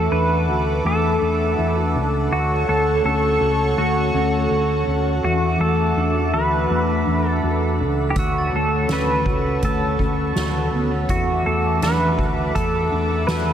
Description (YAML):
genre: dream pop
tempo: 82 BPM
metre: 4/4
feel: straight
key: unclear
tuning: A4 = 438 Hz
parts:
  - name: pedal steel guitar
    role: melody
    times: 0.0-13.5 s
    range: F#4 to B4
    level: -22 LUFS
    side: right 1 dB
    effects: analog chorus, tape echo, shimmer reverb
  - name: phased analog pad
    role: sustained chords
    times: 0.0-13.5 s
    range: A4 to D6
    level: -26 LUFS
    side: right 2 dB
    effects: phaser, chorus, shimmer reverb
  - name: mellow electric guitar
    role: arpeggios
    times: 0.0-13.5 s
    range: E3 to F#4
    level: -25 LUFS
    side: left 3 dB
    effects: wide subtle chorus, tape echo, shimmer reverb
  - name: fingered electric bass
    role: bass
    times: 0.0-13.5 s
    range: C#2 to E2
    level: -23 LUFS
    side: equal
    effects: none
  - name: soft-mallet drum kit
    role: drums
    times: 8.2-13.5 s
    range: hi-hat, kick drum, snare drum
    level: -26 LUFS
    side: equal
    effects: none
  - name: glockenspiel with hard plastic mallets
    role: texture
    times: 8.2-10.8 s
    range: E6 to A6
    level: -36 LUFS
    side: right 2 dB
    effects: tape echo, shimmer reverb
room: wet huge ambient reverb, RT60 9.6 s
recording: dreamy mix soaked in reverb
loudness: -17 LUFS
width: side -9 dB against mid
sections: 0.0-13.5 A section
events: none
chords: 0.0 E9sus4; 2.3 Dmaj7; 5.2 E9sus4; 8.2 Dmaj7; 11.1 E9sus4